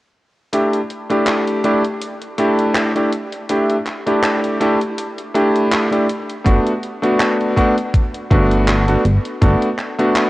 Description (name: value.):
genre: vaporwave.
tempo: 81 BPM.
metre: 4/4.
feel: swing 55% on 16ths.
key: unclear.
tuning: A4 = 442 Hz.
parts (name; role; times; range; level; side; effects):
bright electric grand piano; accompaniment; 0.5-10.3 s; A3 to G4; -16 LUFS; equal; wide subtle chorus, tape echo.
gated 80s digital drum machine; drums; 0.5-10.3 s; handclaps, hi-hat; -23 LUFS; equal; gated reverb, studio reverb.
chorused synth bass; bass; 6.5-9.6 s; G1; -16 LUFS; equal; none.
electronic kick drum; drums; 6.5-9.6 s; none; -15 LUFS; equal; studio reverb.
room: moderate huge ambient reverb, RT60 3.9 s.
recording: worn, warbling old tape, cassette tape, warbly pitch drift.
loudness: -14 LUFS.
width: side -18 dB against mid.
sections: 0.5-10.3 A section.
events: none.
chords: 0.5 A7sus4; 6.5 Gmaj9.